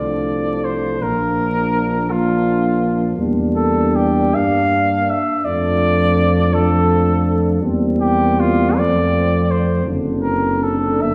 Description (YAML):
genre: classical, hymn-like piece for brass band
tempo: 54 BPM (dotted quarters)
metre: 6/8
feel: uneven beats, rubato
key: D minor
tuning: A4 = 441 Hz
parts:
  - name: warm cornet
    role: melody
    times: 0.0-11.1 s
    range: F4 to F5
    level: -22 LUFS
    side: equal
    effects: none
  - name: clear French horn section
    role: second line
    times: 0.0-11.1 s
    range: C4 to D4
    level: -26 LUFS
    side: equal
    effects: none
  - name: dark euphonium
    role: accompaniment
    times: 0.0-11.1 s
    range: A3 to C4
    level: -26 LUFS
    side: equal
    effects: none
  - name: warm trombone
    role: accompaniment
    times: 0.0-11.1 s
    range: D3 to G3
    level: -27 LUFS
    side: equal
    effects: none
  - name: dark tuba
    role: bass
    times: 0.0-11.1 s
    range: F#1 to G2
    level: -22 LUFS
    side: equal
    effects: none
room: wet recital hall reverb, RT60 1.6 s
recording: heard from further back in the room, vinyl crackle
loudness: -17 LUFS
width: mono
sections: 0.0-11.1 A section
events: none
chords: 0.0 Dm; 1.0 Bb; 3.2 Em7b5; 5.4 Dm/F; 7.6 C7/E; 8.8 F; 9.8 D7/F#